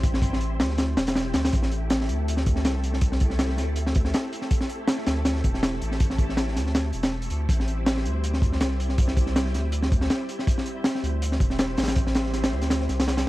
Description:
drum and bass, jungle; 161 BPM; 4/4; swing 54% on 16ths; A minor; A4 = 441 Hz
soft string machine; sustained chords; 0.0-13.3 s; G3 to C5; -33 LUFS; equal; ensemble chorus
saturated sub bass; bass; 0.0-13.3 s; E1 to D2; -26 LUFS; equal
crunchy breakbeat drum kit; drums; 0.0-13.3 s; hi-hat, kick drum, snare drum; -24 LUFS; equal
small room ambience; dark, warm production, vinyl crackle; -22 LUFS; side -17 dB against mid
0.0-13.3 A section
0.0 Am7

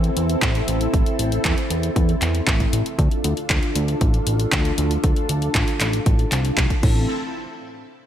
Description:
italo disco; 117 BPM; 4/4; straight; A minor; A4 = 440 Hz
string machine, full ensemble; sustained chords; 0.0-7.1 s; C4 to A4; -25 LUFS; equal; ensemble chorus, vintage 12-bit sampler grit
fat analog bass; bass; 0.0-7.1 s; A1 to E2; -23 LUFS; equal
house drum kit; drums; 0.0-6.9 s; crash cymbal, handclaps, hi-hat; -25 LUFS; equal
electronic kick drum; drums; 0.4-6.9 s; -20 LUFS; equal
light reverb; -18 LUFS; side -10 dB against mid
0.0-7.1 A section
filter sweep on string machine 0.0-7.1
0.0 Am; 3.0 Dm; 6.8 Am; 7.1 N.C.

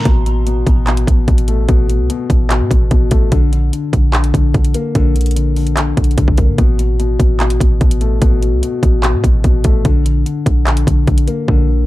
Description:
hip hop, trap; 147 BPM; 4/4; half-time; A4 = 440 Hz
dark concert grand piano; accompaniment; 0.0-11.9 s; B2 to Bb3; -19 LUFS; left 5 dB
clean 808-style bass; bass; 0.0-11.9 s; A1 to Bb2; -14 LUFS; equal
trap drum kit; drums; 0.1-11.6 s; handclaps, hi-hat, kick drum; -14 LUFS; equal
little or no reverb; dark, warm production; -11 LUFS; side -17 dB against mid
0.1-11.9 A section
hi-hats muted 11.5-11.9
0.1 Asus2; 3.3 Bb; 6.6 Asus2; 9.8 Bb

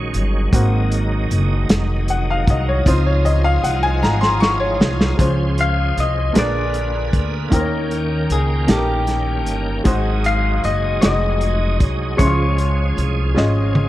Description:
slow gospel; 51 BPM (dotted quarters); 6/8; straight; Db major; A4 = 440 Hz
bright baby grand piano; accompaniment; 0.0-13.9 s; Ab2 to Db6; -22 LUFS; left 1 dB
bright tonewheel organ; sustained chords; 0.0-13.9 s; D3 to G5; -26 LUFS; right 3 dB; slow rotary speaker, chorus vibrato
upright bass; bass; 0.0-13.9 s; F1 to Eb2; -19 LUFS; equal
warm soul drum kit; drums; 0.1-13.9 s; hi-hat, kick drum, snare drum, toms; -18 LUFS; equal
clean electric guitar; melody; 5.6-13.7 s; G4 to F5; -23 LUFS; left 3 dB; spring reverb
light reverb; dark, warm production; -15 LUFS; side -15 dB against mid
0.0-5.2 A section; 5.2-13.9 B section
grand piano solo 0.0-5.2; drum fill 4.0-5.2, 13.4-13.9
0.0 Ebm7; 0.5 Ab7; 2.9 Dbmaj7; 6.4 Bb7b9; 7.5 Eb7; 9.9 Ab7; 12.2 Dbmaj7

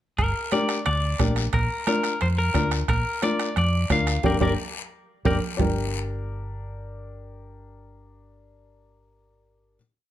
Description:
latin, cumbia; 177 BPM; 4/4; straight; G minor; A4 = 439 Hz
clean electric guitar; melody; 0.2-5.4 s; G4 to F5; -27 LUFS; left 1 dB; spring reverb, slapback echo, plate reverb
hollow-body short-scale fingered electric bass; bass; 0.2-9.8 s; G1 to F2; -26 LUFS; equal
bombo; percussion; 0.2-5.7 s; -28 LUFS; right 3 dB
congas; percussion; 0.2-5.7 s; -31 LUFS; right 2 dB
guiro; percussion; 0.2-5.7 s; -36 LUFS; left 7 dB
timbales; percussion; 0.2-5.7 s; -33 LUFS; right 7 dB
warm upright piano; accompaniment; 0.5-9.8 s; Bb3 to Bb4; -28 LUFS; left 5 dB
light reverb; close, detailed microphones; -21 LUFS; side -12 dB against mid
0.2-5.6 A section; 5.6-8.3 final chord
drum fill 4.2-5.6; band accent 4.2-5.6
0.2 Gm; 1.5 Bb; 4.2 Gm

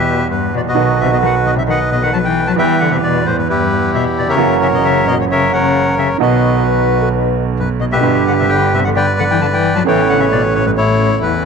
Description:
tango; 132 BPM; 4/4; rubato; E minor; A4 = 438 Hz
bandoneon; melody; 0.0-11.5 s; E4 to A5; -16 LUFS; left 1 dB
warm cello; second line; 0.0-11.4 s; E2 to F#3; -18 LUFS; left 8 dB
bright concert grand piano; accompaniment; 0.0-11.5 s; G1 to G4; -17 LUFS; right 10 dB
clear double bass; bass; 0.0-11.5 s; F#1 to E2; -22 LUFS; right 2 dB
mellow hollow silver concert flute; second line; 6.7-7.4 s; A4 to B4; -19 LUFS; left 8 dB
moderate echo chamber reverb, RT60 2.0 s, small room ambience; 1960s-style stereo with parts hard left and right; -12 LUFS; side -5 dB against mid
0.0-11.5 A section
0.0 Em; 0.8 B; 2.6 Em; 4.4 F#7; 6.2 B; 8.0 G; 9.9 Aadd9

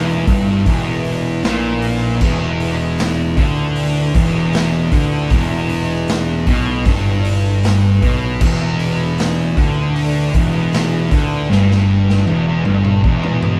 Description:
stoner and doom metal; 78 BPM; 4/4; straight; E minor; A4 = 440 Hz
metallic inharmonic drone; sustained chords; 0.0-13.6 s; E3 to B4; -32 LUFS; equal; chorus, built-in reverb
thick fuzz guitar; riff; 0.0-13.6 s; E2 to D3; -25 LUFS; equal; distortion
thick fuzz guitar; riff; 0.0-13.6 s; E2 to D3; -20 LUFS; equal; distortion
fuzz picked electric bass; bass; 0.0-13.6 s; E1 to D2; -25 LUFS; equal; overdrive
raw garage drum kit; drums; 0.3-13.6 s; crash cymbal, hi-hat, kick drum, snare drum, toms; -22 LUFS; equal
moderate stone room reverb, RT60 0.9 s; band playing live in one room; -16 LUFS; mono
0.0-13.6 A section
drum fill 11.5-13.6
0.0 Em

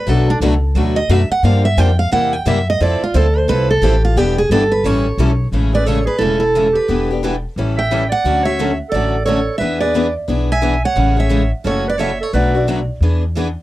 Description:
acoustic string swing (jazz manouche); 176 BPM; 4/4; swing 62% on 8ths; A major from 5.5 s; A4 = 441 Hz
picked steel-string acoustic guitar; melody; 0.0-12.7 s; D4 to G#5; -18 LUFS; right 2 dB
picked steel-string acoustic guitar; accompaniment; 0.1-13.5 s; B2 to A4; -20 LUFS; left 5 dB
picked steel-string acoustic guitar; accompaniment; 0.1-13.5 s; B2 to B4; -24 LUFS; right 6 dB
upright bass; bass; 0.1-13.6 s; E1 to G2; -17 LUFS; equal
clear clarinet; second line; 5.8-12.6 s; E4 to E5; -23 LUFS; right 3 dB
light reverb; dry, close 1970s-style studio recording; -13 LUFS; side -16 dB against mid
0.0-5.5 A section; 5.5-13.6 B section
steel-string acoustic guitar solo 0.0-5.5
0.1 Bm7; 1.4 Gm7; 2.1 C7; 2.8 Fmaj7; 4.2 Em7; 4.8 A7; 5.5 Amaj7; 6.9 Em7; 7.6 A7; 8.3 Dmaj7; 9.6 E7; 11.0 Amaj7; 11.7 F#m7; 12.3 Bm7; 13.0 E7

